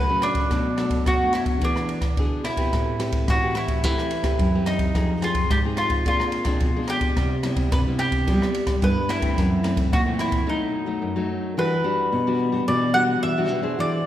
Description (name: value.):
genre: samba and choro.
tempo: 108 BPM.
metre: 4/4.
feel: straight.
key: E minor.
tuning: A4 = 440 Hz.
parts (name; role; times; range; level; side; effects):
mandolin; melody; 0.0-14.1 s; D4 to F#5; -25 LUFS; equal; none.
nylon-string guitar; accompaniment; 0.0-14.1 s; F#2 to C5; -28 LUFS; left 2 dB; none.
nylon-string guitar; bass; 0.0-14.0 s; F2 to G3; -26 LUFS; equal; none.
open jazz drum kit; drums; 0.2-10.5 s; kick drum, ride cymbal, rim click; -24 LUFS; equal; none.
room: wet scoring stage reverb, RT60 1.9 s.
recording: recorded in a church or concert hall.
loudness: -20 LUFS.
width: side -12 dB against mid.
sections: 0.0-11.6 A section; 11.6-14.1 B section.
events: break 10.5-11.6.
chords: 0.0 Dmaj7; 0.5 Bm7; 1.6 E7; 2.7 Am9; 5.0 Fm7; 6.1 A#9; 7.2 Cmaj7; 9.4 F#m7b5; 10.5 B7; 11.6 Em9.